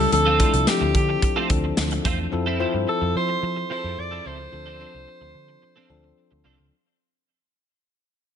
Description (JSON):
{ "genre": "1980s-style pop", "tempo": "109 BPM", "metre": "4/4", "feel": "straight", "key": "unclear", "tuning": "A4 = 440 Hz", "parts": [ { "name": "bright alto saxophone", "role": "melody", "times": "0.0-6.5 s", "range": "G4 to D5", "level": "-25 LUFS", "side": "equal", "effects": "ping-pong delay" }, { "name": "bell-like tine electric piano", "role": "accompaniment", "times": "0.0-6.7 s", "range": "F3 to C5", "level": "-27 LUFS", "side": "left 6 dB", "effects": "none" }, { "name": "twelve-string electric guitar", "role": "riff", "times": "0.0-6.7 s", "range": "F3 to A4", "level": "-29 LUFS", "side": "right 4 dB", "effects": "ensemble chorus, ping-pong delay" }, { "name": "vintage muted picked electric bass", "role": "bass", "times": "0.0-6.7 s", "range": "C2 to F3", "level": "-26 LUFS", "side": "right 1 dB", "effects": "none" }, { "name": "modern studio drum kit", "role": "drums", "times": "0.1-2.2 s", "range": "hi-hat, kick drum, snare drum", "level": "-23 LUFS", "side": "equal", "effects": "gated reverb" } ], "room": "light reverb, small room ambience", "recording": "nothing above 10.8 kHz", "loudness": "-20 LUFS", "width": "side -8 dB against mid", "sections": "0.0-6.7 A section", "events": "fade-out 0.0-6.7", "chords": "0.1 Dm7; 2.3 Fmaj7; 4.5 Dm7", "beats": "| 0.12 0.67 1.22 1.77 | 2.32 2.87 3.42 3.98 | 4.53 5.08 5.63 6.18" }